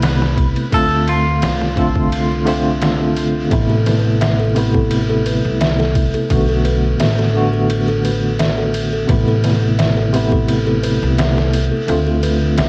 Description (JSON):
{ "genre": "trip hop", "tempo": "86 BPM", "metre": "4/4", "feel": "swing 53% on 16ths", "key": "A minor", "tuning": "A4 = 439 Hz", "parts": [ { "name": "clean electric guitar", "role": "melody", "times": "0.0-3.1 s", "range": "F4 to B4", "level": "-25 LUFS", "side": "equal", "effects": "vintage 12-bit sampler grit, cassette tape, tape echo" }, { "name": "bell-like tine electric piano", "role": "accompaniment", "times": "0.0-12.7 s", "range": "C3 to F#4", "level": "-20 LUFS", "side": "equal", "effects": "tremolo, low-pass filter, cassette tape, tape echo" }, { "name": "upright bass", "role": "bass", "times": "0.0-12.7 s", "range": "A1 to D2", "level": "-21 LUFS", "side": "equal", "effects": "none" }, { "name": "trip hop sampler-style drum kit", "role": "drums", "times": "0.0-12.7 s", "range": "kick drum, ride cymbal, snare drum", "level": "-23 LUFS", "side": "equal", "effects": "cassette tape" }, { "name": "music box", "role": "arpeggios", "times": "3.7-12.7 s", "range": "A4 to E5", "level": "-25 LUFS", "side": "equal", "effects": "cassette tape, tape echo" } ], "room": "light reverb", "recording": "home recording on cassette, vinyl crackle", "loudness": "-16 LUFS", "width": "mono", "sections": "0.0-12.7 A section", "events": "filter sweep on tine electric piano 0.0-12.7", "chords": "0.0 Amadd9; 0.7 Dm7; 3.5 Amadd9; 6.3 Bm7; 9.1 Amadd9; 11.9 Dm7" }